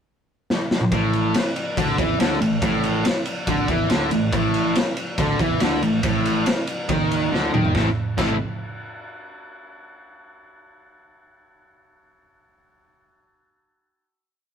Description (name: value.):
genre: blues rock power trio and southern rock.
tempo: 140 BPM.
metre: 4/4.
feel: straight.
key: A minor.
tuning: A4 = 440 Hz.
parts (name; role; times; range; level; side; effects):
raw garage drum kit; drums; 0.5-8.3 s; crash cymbal, kick drum, ride cymbal, snare drum, toms; -23 LUFS; equal; none.
distorted electric guitar; riff; 0.9-8.4 s; A2 to A4; -22 LUFS; equal; distortion.
overdriven fingered electric bass; bass; 0.9-8.4 s; A1 to E2; -28 LUFS; equal; none.
room: light reverb.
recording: rough rehearsal-room recording.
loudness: -19 LUFS.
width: side -7 dB against mid.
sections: 0.0-0.9 pickup bar; 0.9-7.8 riff; 7.8-9.5 final chord.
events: drum fill 0.5-0.9, 7.3-7.8.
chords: 0.0 N.C.; 0.9 A5; 7.8 Am.